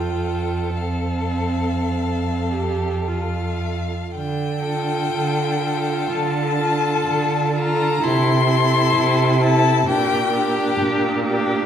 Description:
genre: classical, slow romantic movement for string quartet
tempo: 51-66 BPM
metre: 4/4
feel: rubato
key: F major, D minor from 4.1 s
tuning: A4 = 440 Hz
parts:
  - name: rich violin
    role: melody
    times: 0.0-10.8 s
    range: F5 to C6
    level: -24 LUFS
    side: left 6 dB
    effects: none
  - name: warm violin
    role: second line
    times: 0.0-11.7 s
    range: G4 to A4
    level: -26 LUFS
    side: left 2 dB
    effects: none
  - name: rich viola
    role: accompaniment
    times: 0.0-11.7 s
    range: C4 to G4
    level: -25 LUFS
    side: right 1 dB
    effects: none
  - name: clear cello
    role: bass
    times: 0.0-11.6 s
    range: F2 to D3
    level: -22 LUFS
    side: right 3 dB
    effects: none
room: wet recital hall reverb, RT60 1.3 s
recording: heard from further back in the room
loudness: -18 LUFS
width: side -9 dB against mid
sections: 0.0-4.1 A section; 4.1-11.7 B section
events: none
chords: 0.0 F; 4.1 Dm; 8.0 Am/C; 9.9 Gm/Bb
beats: 0.77 1.93 3.06 | 4.14 5.13 6.11 7.07 | 8.02 8.95 9.87 10.79

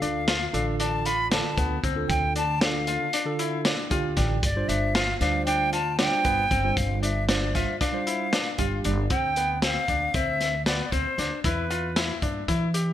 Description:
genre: progressive instrumental, band music in an uneven meter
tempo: 231 BPM (eighths)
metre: 9/8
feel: straight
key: unclear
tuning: A4 = 444 Hz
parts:
  - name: bright concert flute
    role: melody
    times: 0.0-12.0 s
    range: B4 to B5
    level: -27 LUFS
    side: equal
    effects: none
  - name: tine electric piano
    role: accompaniment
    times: 0.0-9.0 s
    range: D3 to G5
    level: -32 LUFS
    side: right 3 dB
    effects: medium stereo tremolo
  - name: bright grand piano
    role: arpeggios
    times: 0.0-12.9 s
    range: B3 to G4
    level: -31 LUFS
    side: left 5 dB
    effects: none
  - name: upright bass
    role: bass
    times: 0.0-12.9 s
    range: G1 to E3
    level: -29 LUFS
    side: equal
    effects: none
  - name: crunchy breakbeat drum kit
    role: drums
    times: 0.0-12.9 s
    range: hi-hat, kick drum, snare drum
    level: -28 LUFS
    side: equal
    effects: none
room: light reverb, studio reverb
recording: bright 1980s-style digital production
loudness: -22 LUFS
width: side -11 dB against mid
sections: 0.0-9.1 A section; 9.1-12.9 B section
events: tine electric piano fill 3.7-4.4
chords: 0.0 G7sus4; 9.1 Dm7; 11.4 Em7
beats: 0.02 0.28 0.54 0.80 1.05 1.31 1.57 1.83 | 2.09 2.35 2.61 2.87 3.13 3.39 3.65 3.91 4.17 | 4.43 4.69 4.95 5.21 5.47 5.73 5.99 6.25 6.51 | 6.77 7.03 7.29 7.55 7.81 8.07 8.33 8.59 8.85 | 9.11 9.37 9.63 9.89 10.15 10.41 10.66 10.93 11.19 | 11.45 11.71 11.96 12.22 12.48 12.74

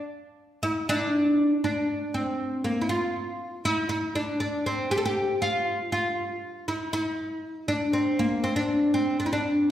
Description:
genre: arabic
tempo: 119 BPM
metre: 4/4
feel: straight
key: D maqam bayati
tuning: A4 = 440 Hz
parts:
  - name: oud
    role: solo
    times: 0.0-9.7 s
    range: Bb3 to A4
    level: -24 LUFS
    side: equal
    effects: none
room: wet recital hall reverb, RT60 1.4 s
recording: heard from further back in the room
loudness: -24 LUFS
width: side -11 dB against mid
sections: 0.0-1.6 A section; 1.6-9.7 B section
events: none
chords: none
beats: 0.13 0.63 1.14 | 1.64 2.14 2.65 3.15 | 3.65 4.16 4.66 5.16 | 5.67 6.17 6.68 7.18 | 7.68 8.19 8.69 9.20

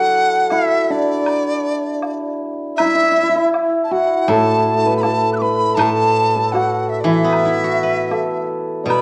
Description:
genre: chinese traditional, Chinese chamber ensemble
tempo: 79 BPM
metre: 4/4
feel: rubato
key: unclear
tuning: A4 = 440 Hz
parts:
  - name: dizi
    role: melody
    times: 0.0-9.0 s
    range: D5 to F#6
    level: -20 LUFS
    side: equal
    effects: none
  - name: hammered dulcimer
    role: second line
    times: 0.0-9.0 s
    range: D4 to D5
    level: -21 LUFS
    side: equal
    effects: none
  - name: steel-string zither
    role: accompaniment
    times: 0.0-9.0 s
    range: A2 to B4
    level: -23 LUFS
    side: equal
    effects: none
  - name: woodblock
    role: percussion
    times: 0.5-9.0 s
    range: none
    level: -28 LUFS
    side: equal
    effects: none
room: moderate recital hall reverb, RT60 1.3 s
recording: worn, warbling old tape, cassette tape, warbly pitch drift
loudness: -17 LUFS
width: mono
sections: 0.0-9.0 A section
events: none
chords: none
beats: 0.52 1.28 2.03 | 2.79 3.54 4.29 5.04 | 5.80 6.55 7.32 8.11 | 8.90

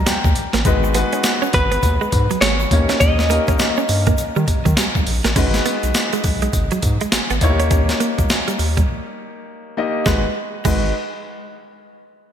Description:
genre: R&B, new jack swing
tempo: 102 BPM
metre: 4/4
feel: swing 61% on 16ths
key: G# minor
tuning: A4 = 440 Hz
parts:
  - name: warm concert grand piano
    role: accompaniment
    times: 0.0-10.9 s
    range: G3 to A#5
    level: -23 LUFS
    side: left 3 dB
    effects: none
  - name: direct-recorded clean electric guitar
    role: riff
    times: 0.1-10.8 s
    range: F#3 to C#4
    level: -25 LUFS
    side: right 5 dB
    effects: analog chorus
  - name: round analog bass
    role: bass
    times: 0.1-10.9 s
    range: G#1 to D#3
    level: -20 LUFS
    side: equal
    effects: none
  - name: breakbeat sampler-style drum kit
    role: drums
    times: 0.1-10.8 s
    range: crash cymbal, hi-hat, kick drum, snare drum, tambourine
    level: -18 LUFS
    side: equal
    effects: overdrive, gated reverb
  - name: egg shaker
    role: percussion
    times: 0.1-10.9 s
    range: none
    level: -36 LUFS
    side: left 9 dB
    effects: none
  - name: direct-recorded clean electric guitar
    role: melody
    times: 1.5-4.7 s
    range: B4 to D#5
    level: -21 LUFS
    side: equal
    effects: ping-pong delay
room: moderate lush hall reverb, RT60 2.6 s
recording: bright 1980s-style digital production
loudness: -15 LUFS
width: side -9 dB against mid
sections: 0.0-5.4 A section; 5.4-10.1 B section; 10.1-12.3 C section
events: grand piano fill 0.0-0.7; break 8.9-10.1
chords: 0.0 D#7; 0.7 G#m7; 2.7 D#7; 5.4 G#m7; 7.4 D#7; 10.1 G#m7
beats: 0.06 | 0.65 1.24 1.83 2.42 | 3.00 3.59 4.18 4.77 | 5.36 5.95 6.53 7.12 | 7.71 8.30 8.89 9.47 | 10.06 10.65

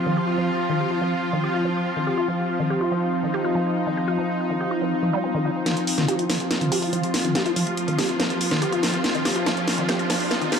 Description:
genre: psychedelic trance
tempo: 142 BPM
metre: 4/4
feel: straight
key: unclear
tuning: A4 = 441 Hz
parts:
  - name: swarming drone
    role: sustained chords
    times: 0.0-10.6 s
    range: F3 to F4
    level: -26 LUFS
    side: equal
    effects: built-in reverb
  - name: warbly tape-like pad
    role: texture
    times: 0.0-10.6 s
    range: C4 to C6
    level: -27 LUFS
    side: equal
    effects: chorus, built-in reverb
  - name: woody wave-folded pluck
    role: riff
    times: 0.1-10.6 s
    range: Eb3 to G4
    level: -26 LUFS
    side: moving between left 4 dB and right 4 dB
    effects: chorus, auto-pan, cassette tape, dub echo
  - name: techno drum kit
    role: drums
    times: 5.7-10.6 s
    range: hi-hat, snare drum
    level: -24 LUFS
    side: equal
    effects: none
  - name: riser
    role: sound effects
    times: 7.1-10.6 s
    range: none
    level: -34 LUFS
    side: equal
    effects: none
room: moderate lush hall reverb, RT60 1.9 s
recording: dark, warm production, high-pass filter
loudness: -21 LUFS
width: side -6 dB against mid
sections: 0.0-5.7 A section; 5.7-10.6 B section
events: filter sweep on synth arpeggio sound 0.0-5.7, 5.7-10.6; build-up 5.7-10.6; drum fill 5.7-10.6; riser 7.1-10.6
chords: 0.0 F5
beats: 0.17 | 0.59 1.01 1.44 1.86 | 2.28 2.70 3.13 3.55 | 3.97 4.39 4.82 5.24 | 5.66 6.08 6.51 6.93 | 7.35 7.77 8.20 8.62 | 9.04 9.46 9.89 10.31

